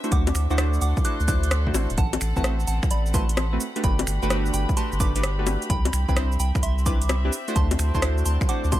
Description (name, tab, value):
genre	UK garage, two-step garage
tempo	129 BPM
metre	4/4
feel	swing 67% on 16ths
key	unclear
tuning	A4 = 440 Hz
part	deep mellow chord stab	stabs	0.0-8.8 s	A3 to C5	-30 LUFS	right 1 dB	chorus
part	garage drum kit	drums	0.0-8.8 s	bongos, finger snaps, hi-hat, rim click, shaker	-28 LUFS	left 2 dB	none
part	rich chamber string section	texture	0.0-8.8 s	C4 to C6	-37 LUFS	equal	sidechain pumping
part	soft synth bell	melody	0.1-8.8 s	D5 to F#6	-32 LUFS	right 2 dB	chorus, ping-pong delay
part	saturated sub bass	bass	0.1-8.8 s	D1 to D2	-23 LUFS	equal	sidechain pumping
part	electronic kick drum	drums	0.1-8.8 s	none	-24 LUFS	equal	none
room	digital ambience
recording	none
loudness	-20 LUFS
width	side -14 dB against mid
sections	0.0-8.8 A section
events	none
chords	0.0 D7; 2.0 Am69; 3.8 Gmaj7; 5.7 Cmaj7; 7.3 D7